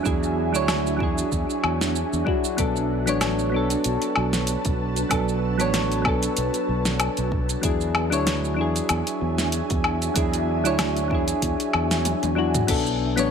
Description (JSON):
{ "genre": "sunset chillout", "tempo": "95 BPM", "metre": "4/4", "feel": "swing 56% on 16ths", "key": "unclear", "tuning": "A4 = 440 Hz", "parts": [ { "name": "soft electric-piano-like synth keys", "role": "accompaniment", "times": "0.0-13.3 s", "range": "F#3 to C#5", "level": "-25 LUFS", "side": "moving between left 7 dB and right 6 dB", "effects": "chorus, auto-pan, ping-pong delay" }, { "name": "ethereal airy pad", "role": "sustained chords", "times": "0.0-13.3 s", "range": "D4 to A5", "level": "-28 LUFS", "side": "right 1 dB", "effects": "ensemble chorus, built-in reverb" }, { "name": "fretless electric bass", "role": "bass", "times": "0.1-13.3 s", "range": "A1 to E2", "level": "-27 LUFS", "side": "equal", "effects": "ensemble chorus" }, { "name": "deep house drum kit", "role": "drums", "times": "0.1-13.3 s", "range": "crash cymbal, hi-hat, shaker, snare drum, toms, woodblock", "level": "-26 LUFS", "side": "left 1 dB", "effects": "none" }, { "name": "electronic kick drum", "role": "drums", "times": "0.1-12.8 s", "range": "none", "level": "-27 LUFS", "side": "equal", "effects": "none" } ], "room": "moderate plate reverb, RT60 2.2 s", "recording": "none", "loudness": "-21 LUFS", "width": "side -7 dB against mid", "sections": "0.0-12.7 A section", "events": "kick drops out 12.1-12.7; drum fill 12.1-12.7", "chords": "0.0 E9; 2.6 Bm7; 7.6 E9; 12.7 Bm7" }